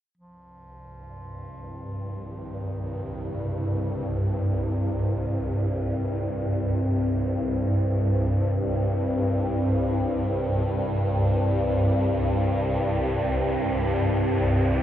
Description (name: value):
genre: dark ambient drone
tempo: free time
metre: none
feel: none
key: unclear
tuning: A4 = 440 Hz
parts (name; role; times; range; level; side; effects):
- mellow bass clarinet; melody; 0.2-6.0 s; C3 to F3; -44 LUFS; equal; ping-pong delay
- deep dark ambient pad; sustained chords; 0.9-14.8 s; C4 to C5; -30 LUFS; left 1 dB; chorus, built-in reverb
- swarming drone; drone; 1.2-14.8 s; C2 to G2; -24 LUFS; equal; built-in reverb
room: wet cathedral reverb, RT60 6.3 s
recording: worn, warbling old tape, cassette tape, warbly pitch drift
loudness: -23 LUFS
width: side -11 dB against mid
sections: 0.2-14.8 A section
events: fade-in on bass clarinet 0.2-14.8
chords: 0.2 C5